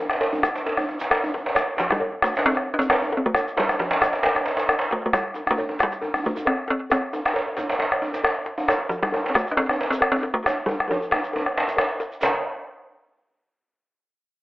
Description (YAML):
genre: west african traditional, West African drum ensemble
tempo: 135 BPM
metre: 4/4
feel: swing 54% on 16ths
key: F major pentatonic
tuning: A4 = 441 Hz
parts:
  - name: talking drum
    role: melody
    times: 0.0-12.4 s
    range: C3 to D4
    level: -24 LUFS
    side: equal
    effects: slapback echo
  - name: djembe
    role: percussion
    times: 0.0-12.4 s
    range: none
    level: -25 LUFS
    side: right 1 dB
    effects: none
  - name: bombo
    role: percussion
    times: 0.1-12.4 s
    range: none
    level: -25 LUFS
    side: left 1 dB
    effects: none
  - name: djembe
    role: percussion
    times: 0.1-12.4 s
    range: none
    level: -31 LUFS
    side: left 2 dB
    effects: none
  - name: cowbell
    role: percussion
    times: 0.2-12.4 s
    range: none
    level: -31 LUFS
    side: right 3 dB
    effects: none
  - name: shekere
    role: percussion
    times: 0.4-12.4 s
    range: none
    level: -44 LUFS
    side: right 2 dB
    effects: none
room: light reverb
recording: telephone sound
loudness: -20 LUFS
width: side -18 dB against mid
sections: 0.0-12.2 A section; 12.2-14.0 B section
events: drum fill 10.5-12.2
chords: none